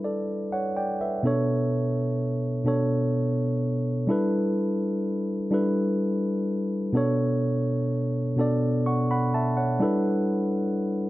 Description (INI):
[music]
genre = R&B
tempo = 42 BPM (dotted quarters)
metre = 6/8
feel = straight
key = B minor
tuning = A4 = 441 Hz
[part]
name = mellow tine electric piano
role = solo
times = 0.0-11.1 s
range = B2 to C#6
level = -23 LUFS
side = equal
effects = none
[sound]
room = light reverb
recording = dark, warm production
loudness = -23 LUFS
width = side -17 dB against mid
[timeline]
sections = 0.0-9.8 A section; 9.8-11.1 B section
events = none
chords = 0.0 G69; 1.2 Bm9; 4.1 G69; 6.9 Bm9; 9.8 G69